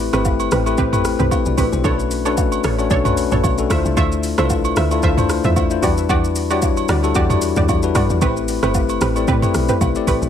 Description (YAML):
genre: amapiano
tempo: 113 BPM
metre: 4/4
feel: swing 55% on 16ths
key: unclear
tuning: A4 = 440 Hz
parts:
  - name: bell-like tine electric piano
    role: accompaniment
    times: 0.0-10.3 s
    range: G3 to E5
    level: -20 LUFS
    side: left 8 dB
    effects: none
  - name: punchy chord stab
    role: stabs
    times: 0.0-10.3 s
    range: C4 to E5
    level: -24 LUFS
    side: right 4 dB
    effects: chorus, ping-pong delay
  - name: deep log drum bass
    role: bass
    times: 0.0-10.3 s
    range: G1 to A2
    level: -21 LUFS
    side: right 1 dB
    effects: none
  - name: deep house drum kit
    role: drums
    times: 0.1-10.3 s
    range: hi-hat, kick drum, rim click, shaker, toms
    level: -21 LUFS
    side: right 1 dB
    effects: none
  - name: agogo bells and woodblock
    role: percussion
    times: 0.1-10.2 s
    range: none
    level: -27 LUFS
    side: right 11 dB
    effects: none
room: digital ambience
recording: none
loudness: -15 LUFS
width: side -9 dB against mid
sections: 0.0-10.3 A section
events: none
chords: 0.0 Am9; 1.8 Bm9; 3.7 Dm9; 5.8 Em9; 8.2 Am9